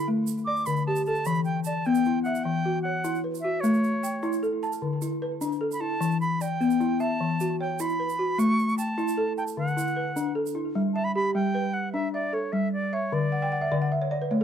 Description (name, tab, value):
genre	west african traditional, West African string and xylophone music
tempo	101 BPM (dotted quarters)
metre	12/8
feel	straight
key	G lydian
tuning	A4 = 440 Hz
part	bright reedy silver concert flute	melody	0.0-13.9 s	C#5 to D6	-30 LUFS	right 2 dB	none
part	balafon	arpeggios	0.0-14.4 s	D3 to A5	-25 LUFS	left 1 dB	tape echo
part	egg shaker	percussion	0.3-10.6 s	none	-42 LUFS	right 16 dB	none
room	small room ambience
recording	dry, close 1970s-style studio recording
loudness	-24 LUFS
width	side -8 dB against mid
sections	0.0-1.3 A section; 1.3-10.8 B section; 10.8-14.4 C section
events	flute solo 0.0-1.3; balafon fill 13.3-14.4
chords	0.0 D5; 1.3 Em; 3.6 A; 4.8 D5; 6.0 Em; 8.4 A; 9.6 D; 10.8 G; 13.1 D5